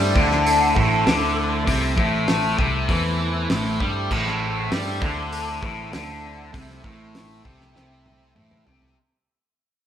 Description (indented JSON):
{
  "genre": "psychedelic rock",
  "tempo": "99 BPM",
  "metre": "4/4",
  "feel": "straight",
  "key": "A minor",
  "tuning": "A4 = 439 Hz",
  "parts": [
    { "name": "combo organ", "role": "sustained chords", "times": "0.0-8.9 s", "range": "A3 to E4", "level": "-30 LUFS", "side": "right 2 dB", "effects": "spring reverb" },
    { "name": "fuzz guitar", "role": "riff", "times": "0.0-9.0 s", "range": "A2 to G3", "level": "-22 LUFS", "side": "left 1 dB", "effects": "distortion, phaser" },
    { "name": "picked electric bass", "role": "bass", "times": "0.0-8.9 s", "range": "A1 to G2", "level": "-27 LUFS", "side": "equal", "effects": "none" },
    { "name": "cloth-damped thuddy drum kit", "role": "drums", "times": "0.2-9.0 s", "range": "crash cymbal, hi-hat, kick drum, snare drum, toms", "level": "-25 LUFS", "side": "equal", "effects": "none" }
  ],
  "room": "moderate stone room reverb, RT60 1.3 s",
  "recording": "band playing live in one room",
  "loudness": "-19 LUFS",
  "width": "side -9 dB against mid",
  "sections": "0.0-9.0 A section",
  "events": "fade-out 0.0-9.0; drum fill 7.8-9.0",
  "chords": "0.0 Am"
}